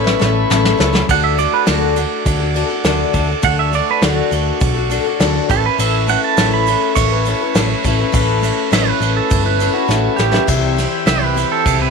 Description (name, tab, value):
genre	folk rock and heartland rock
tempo	102 BPM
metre	4/4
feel	straight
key	D major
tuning	A4 = 440 Hz
part	picked twelve-string acoustic guitar	accompaniment	0.0-11.9 s	C3 to B4	-19 LUFS	left 15 dB	none
part	bright tonewheel organ	sustained chords	0.0-11.9 s	A4 to E6	-24 LUFS	right 16 dB	lush chorus
part	hollow-body short-scale picked electric bass	bass	0.0-11.9 s	G1 to D2	-19 LUFS	right 1 dB	none
part	soft brush drum kit	drums	0.1-11.8 s	crash cymbal, kick drum, ride cymbal, snare drum, splash cymbal	-19 LUFS	right 1 dB	none
part	egg shaker	percussion	0.2-11.8 s	none	-33 LUFS	right 16 dB	none
part	pedal steel guitar	second line	1.1-11.9 s	F#4 to C#6	-18 LUFS	right 16 dB	none
room	small room ambience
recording	1960s-style stereo with parts hard left and right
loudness	-13 LUFS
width	side -5 dB against mid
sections	0.0-1.1 A section; 1.1-11.9 B section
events	drum fill 0.0-1.1, 9.9-10.5; pedal steel guitar solo 1.1-11.9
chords	0.0 Aadd9; 1.1 D; 5.5 Aadd9; 10.5 C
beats	0.51 | 1.09 1.68 2.27 2.85 | 3.44 4.03 4.61 5.20 | 5.79 6.38 6.96 7.55 | 8.14 8.72 9.31 9.90 | 10.49 11.07 11.66